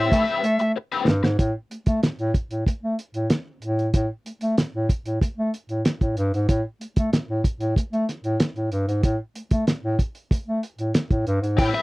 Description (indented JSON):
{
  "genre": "funk",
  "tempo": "94 BPM",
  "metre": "4/4",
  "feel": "straight",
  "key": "A minor",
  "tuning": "A4 = 440 Hz",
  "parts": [
    { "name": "high-gain lead guitar", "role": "melody", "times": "0.0-0.7, 11.6-11.8 s", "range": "E5 to G5", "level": "-24 LUFS", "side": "left 1 dB", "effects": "distortion" },
    { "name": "overdriven electric guitar", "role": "accompaniment", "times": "0.0-1.3, 11.6-11.8 s", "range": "C4 to B4", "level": "-26 LUFS", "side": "left 6 dB", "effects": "wah" },
    { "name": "warm bass clarinet", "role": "bass", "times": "0.0-11.7 s", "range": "G2 to A3", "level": "-23 LUFS", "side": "equal", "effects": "none" },
    { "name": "cloth-damped thuddy drum kit", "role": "drums", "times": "0.1-11.7 s", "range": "crash cymbal, hi-hat, kick drum, snare drum", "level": "-21 LUFS", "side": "equal", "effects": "none" }
  ],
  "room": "little or no reverb",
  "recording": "dry, close 1970s-style studio recording",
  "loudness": "-21 LUFS",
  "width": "side -21 dB against mid",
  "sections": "0.0-1.4 A section; 1.4-11.6 B section",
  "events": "drum fill 0.8-1.4",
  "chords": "0.0 Am9; 1.4 N.C.",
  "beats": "0.12 0.75 | 1.39 2.03 2.66 3.30 | 3.94 4.58 5.21 5.85 | 6.49 7.12 7.76 8.40 | 9.04 9.67 10.31 10.95 | 11.58"
}